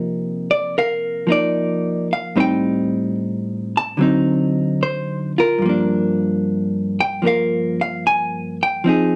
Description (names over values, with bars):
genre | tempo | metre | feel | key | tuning
jazz ballad | 74 BPM | 4/4 | swing 67% on 8ths | unclear | A4 = 440 Hz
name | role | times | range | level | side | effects
vintage hollow-body jazz guitar | solo | 0.0-9.2 s | G2 to A5 | -20 LUFS | equal | none
room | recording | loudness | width
light reverb | dark, warm production, nothing above 11.0 kHz | -20 LUFS | mono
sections
0.0-9.2 A section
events
none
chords
0.0 Cm7; 2.4 Am7b5; 4.0 D7b9; 5.6 Gm7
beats
0.73 1.54 | 2.35 3.16 3.98 4.79 | 5.60 6.41 7.22 8.03 | 8.84